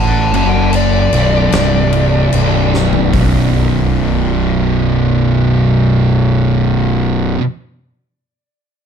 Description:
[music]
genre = stoner and doom metal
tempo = 74 BPM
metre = 4/4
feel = straight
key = B phrygian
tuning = A4 = 441 Hz
[part]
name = fuzz lead guitar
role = melody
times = 0.0-3.1 s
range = D5 to A5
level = -19 LUFS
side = left 1 dB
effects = wah, distortion, tape echo
[part]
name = thick fuzz guitar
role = riff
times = 0.0-7.4 s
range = B1 to B2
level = -17 LUFS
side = left 9 dB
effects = distortion
[part]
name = thick fuzz guitar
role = riff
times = 0.0-7.4 s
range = B1 to B2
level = -16 LUFS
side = right 9 dB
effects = distortion
[part]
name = fuzz fingered electric bass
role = bass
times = 0.0-7.3 s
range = B0 to A1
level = -16 LUFS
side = equal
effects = overdrive
[part]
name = oversized low-tuned drum kit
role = drums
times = 0.3-3.3 s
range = crash cymbal, hi-hat, kick drum, snare drum, toms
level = -18 LUFS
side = left 1 dB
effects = none
[sound]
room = light reverb, small room ambience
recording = dark, warm production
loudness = -11 LUFS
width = side -7 dB against mid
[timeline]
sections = 0.0-3.1 A section; 3.1-6.4 B section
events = slowing down 0.0-3.1; lead electric guitar solo 0.0-3.1; drum fill 2.7-3.1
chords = 0.0 Bm; 3.1 B5

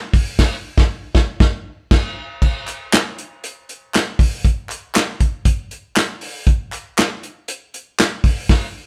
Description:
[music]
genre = funk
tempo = 118 BPM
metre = 4/4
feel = straight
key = none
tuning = none
[part]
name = warm soul drum kit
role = drums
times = 0.1-8.7 s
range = crash cymbal, handclaps, hi-hat, kick drum, snare drum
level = -18 LUFS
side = equal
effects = none
[part]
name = group handclap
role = percussion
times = 2.7-8.1 s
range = none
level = -33 LUFS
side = equal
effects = none
[sound]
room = moderate studio reverb, RT60 0.8 s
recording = band playing live in one room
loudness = -19 LUFS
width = mono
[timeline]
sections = 0.0-2.4 A section; 2.4-8.9 B section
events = band accent 0.4-2.4, 8.5-8.9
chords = none

